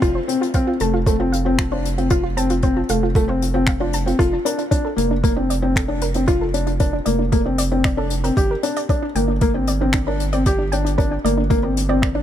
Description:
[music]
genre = piano and strings electronica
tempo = 115 BPM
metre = 4/4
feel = straight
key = F major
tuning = A4 = 440 Hz
[part]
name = soft round pluck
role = arpeggios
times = 0.0-12.2 s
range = D4 to A5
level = -27 LUFS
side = right 3 dB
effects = chorus, sidechain pumping, ping-pong delay
[part]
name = felt-muted upright piano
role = riff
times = 0.0-12.2 s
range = A3 to G4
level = -20 LUFS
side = left 2 dB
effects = ping-pong delay
[part]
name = round analog bass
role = bass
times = 0.0-12.2 s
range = F1 to G1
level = -23 LUFS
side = right 1 dB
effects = sidechain pumping
[part]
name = electronic kick drum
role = drums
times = 0.0-12.1 s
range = none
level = -20 LUFS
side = right 1 dB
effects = overdrive
[part]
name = vintage brush drum kit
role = drums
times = 0.0-12.1 s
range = finger snaps, hi-hat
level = -28 LUFS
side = left 3 dB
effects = none
[sound]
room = little or no reverb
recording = none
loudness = -17 LUFS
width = side -10 dB against mid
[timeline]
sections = 0.0-12.2 A section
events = drop 0.0-12.2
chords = 0.0 F; 4.2 Bbmaj7/F; 8.4 Gm

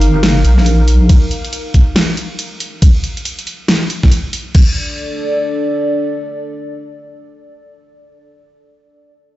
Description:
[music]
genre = deep dubstep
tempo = 139 BPM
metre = 4/4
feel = swing 62% on 16ths, half-time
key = D phrygian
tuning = A4 = 440 Hz
[part]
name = dark analog pad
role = sustained chords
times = 0.0-8.1 s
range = D4 to F5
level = -20 LUFS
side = equal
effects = chorus
[part]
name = deep soft wobble bass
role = bass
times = 0.0-1.1 s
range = G1 to Bb1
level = -10 LUFS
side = equal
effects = chorus
[part]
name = dubstep drum kit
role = drums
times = 0.0-4.7 s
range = crash cymbal, hi-hat, ride cymbal, snare drum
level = -18 LUFS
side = equal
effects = overdrive
[part]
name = electronic kick drum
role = drums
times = 1.1-4.7 s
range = none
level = -8 LUFS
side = equal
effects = overdrive
[sound]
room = digital ambience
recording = played on a big sound system in a bare room, large studio reverb, nothing above 7.9 kHz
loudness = -11 LUFS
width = side -16 dB against mid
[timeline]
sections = 0.0-4.5 A section; 4.5-8.0 B section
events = drop 0.0-4.5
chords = 0.0 Eb5; 4.5 D5

